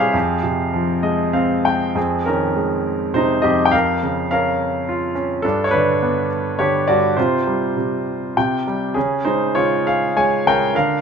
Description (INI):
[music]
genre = classical, lyrical solo piano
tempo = 102 BPM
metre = 3/4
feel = rubato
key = F minor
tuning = A4 = 439 Hz
[part]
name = bright grand piano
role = solo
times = 0.0-11.0 s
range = F2 to Ab5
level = -16 LUFS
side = equal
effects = none
[sound]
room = moderate recital hall reverb, RT60 1.7 s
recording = minimal, uncompressed stereo recording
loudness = -16 LUFS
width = side -6 dB against mid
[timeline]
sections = 0.0-2.0 A section; 2.0-11.0 A section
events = grand piano fill 0.7-2.0, 8.1-9.0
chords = 0.1 Fm; 2.0 Fm7; 3.7 Bbm/F; 5.4 G; 7.2 Csus4; 9.0 Db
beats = | 0.14 0.73 1.34 | 1.96 2.56 3.15 | 3.73 4.31 4.87 | 5.44 6.01 6.59 | 7.17 7.75 8.36 | 8.96 9.55 10.15 | 10.74